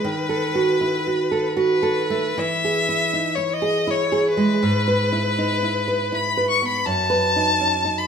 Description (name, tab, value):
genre	romantic duo for violin and classical guitar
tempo	80 BPM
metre	3/4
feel	rubato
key	E major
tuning	A4 = 441 Hz
part	rich violin	melody	0.0-8.1 s	B4 to C#6	-22 LUFS	left 4 dB	none
part	nylon-string guitar	accompaniment	0.0-8.1 s	F#2 to B4	-21 LUFS	right 3 dB	none
room	moderate recital hall reverb, RT60 1.5 s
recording	minimal, uncompressed stereo recording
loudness	-18 LUFS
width	side -7 dB against mid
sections	0.0-8.1 A section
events	none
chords	0.0 B7/D#; 2.4 E; 4.6 E/G#; 6.9 B7/F#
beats	| 0.04 0.80 1.57 | 2.38 3.13 3.88 | 4.63 5.38 6.12 | 6.86 7.60